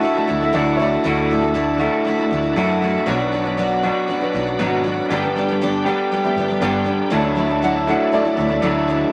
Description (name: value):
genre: rock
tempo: 119 BPM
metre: 4/4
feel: straight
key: D major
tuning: A4 = 440 Hz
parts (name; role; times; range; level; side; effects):
- bright upright piano; second line; 0.0-2.3, 7.1-9.1 s; A4 to B5; -28 LUFS; equal; none
- picked twelve-string acoustic guitar; accompaniment; 0.0-9.1 s; G2 to G4; -25 LUFS; equal; none
- bright tonewheel organ; sustained chords; 0.0-9.1 s; D4 to D5; -31 LUFS; equal; slow rotary speaker, overdrive, chorus vibrato
- electric guitar through a small old amp; riff; 0.0-9.1 s; G2 to G4; -22 LUFS; equal; none
- picked electric bass; bass; 0.3-9.0 s; G1 to F#2; -28 LUFS; equal; none
- clear concert grand piano; accompaniment; 3.1-8.8 s; D4 to E5; -30 LUFS; equal; none
room: light reverb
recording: vinyl crackle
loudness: -19 LUFS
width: mono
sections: 0.0-9.1 A section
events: none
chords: 0.0 Dadd9; 3.1 Bm; 5.1 G; 7.1 Dadd9